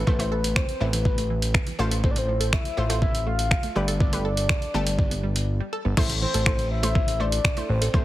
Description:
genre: dance-pop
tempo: 122 BPM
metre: 4/4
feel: straight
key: A minor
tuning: A4 = 440 Hz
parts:
  - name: soft octave-layered synth lead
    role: melody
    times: 0.0-8.0 s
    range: B4 to F5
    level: -30 LUFS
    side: left 2 dB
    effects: chorus, ping-pong delay
  - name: fat analog bass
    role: bass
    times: 0.0-8.0 s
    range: G1 to A1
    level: -25 LUFS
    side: equal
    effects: sidechain pumping
  - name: analog pluck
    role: accompaniment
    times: 0.1-8.0 s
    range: A3 to C5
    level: -32 LUFS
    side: equal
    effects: chorus, sidechain pumping
  - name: wide unison pluck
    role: arpeggios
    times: 0.1-8.0 s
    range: E3 to A4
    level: -35 LUFS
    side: right 2 dB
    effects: sidechain pumping, ping-pong delay
  - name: breakbeat sampler-style drum kit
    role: drums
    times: 0.1-8.0 s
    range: crash cymbal, finger snaps, hi-hat, kick drum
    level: -24 LUFS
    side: equal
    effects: none
room: digital ambience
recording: heavily compressed radio sound, multiband compression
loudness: -21 LUFS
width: side -15 dB against mid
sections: 0.0-6.0 A section; 6.0-8.0 B section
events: break 5.5-6.0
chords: 0.0 Am; 1.8 F/A; 3.8 Gadd9; 6.0 Am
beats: | 0.07 0.56 1.05 1.55 | 2.04 2.53 3.02 3.51 | 4.00 4.50 4.99 5.48 | 5.97 6.46 6.96 7.45 | 7.94

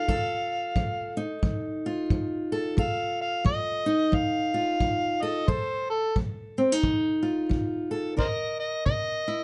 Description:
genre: acoustic country blues, solo or duo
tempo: 89 BPM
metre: 4/4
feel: swing 61% on 8ths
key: F mixolydian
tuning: A4 = 442 Hz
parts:
  - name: overdriven harmonica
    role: melody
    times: 0.0-9.4 s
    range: A4 to F5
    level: -30 LUFS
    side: equal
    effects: none
  - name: fingerpicked steel-string acoustic guitar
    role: accompaniment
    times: 0.0-9.4 s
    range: C3 to Bb4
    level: -30 LUFS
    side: equal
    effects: none
  - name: kick drum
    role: drums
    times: 0.1-9.1 s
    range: none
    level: -32 LUFS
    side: equal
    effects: none
room: light reverb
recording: nothing above 10.5 kHz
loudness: -27 LUFS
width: mono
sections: 0.0-9.4 A section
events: harmonica solo 0.0-9.4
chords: 0.0 F7; 8.2 C7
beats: | 0.09 0.77 1.44 2.11 | 2.78 3.46 4.13 4.81 | 5.48 6.16 6.83 7.51 | 8.18 8.86

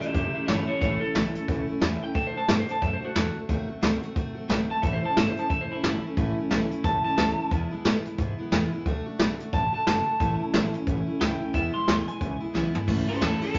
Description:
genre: rockabilly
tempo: 179 BPM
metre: 4/4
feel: swing 60% on 8ths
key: unclear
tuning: A4 = 441 Hz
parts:
  - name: electric guitar through a small old amp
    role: melody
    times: 0.0-7.5, 9.5-13.6 s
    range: E4 to C6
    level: -31 LUFS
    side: equal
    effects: spring reverb
  - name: picked steel-string acoustic guitar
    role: accompaniment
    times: 0.0-13.6 s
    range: E2 to F#4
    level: -32 LUFS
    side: equal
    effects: none
  - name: upright bass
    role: bass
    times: 0.0-13.6 s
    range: F#1 to B2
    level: -36 LUFS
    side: equal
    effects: none
  - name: jazz brush drum kit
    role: drums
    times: 0.0-13.6 s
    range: hi-hat, kick drum, ride cymbal, snare drum, toms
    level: -29 LUFS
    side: equal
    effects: none
room: wet studio reverb, RT60 0.6 s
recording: nothing above 7.5 kHz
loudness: -26 LUFS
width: mono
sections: 0.0-12.9 A section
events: drum fill 12.5-12.9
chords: 0.0 A; 2.2 D; 3.5 D#dim7; 4.8 A; 7.5 E; 8.9 D; 10.2 A; 11.5 E; 12.9 A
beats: 0.15 0.48 | 0.81 1.15 1.48 1.82 | 2.15 2.49 2.82 3.16 | 3.49 3.83 4.16 4.50 | 4.83 5.17 5.50 5.84 | 6.17 6.51 6.84 7.18 | 7.51 7.85 8.19 8.52 | 8.86 9.19 9.53 9.87 | 10.20 10.54 10.87 11.21 | 11.54 11.88 12.21 12.54 | 12.88 13.21 13.55

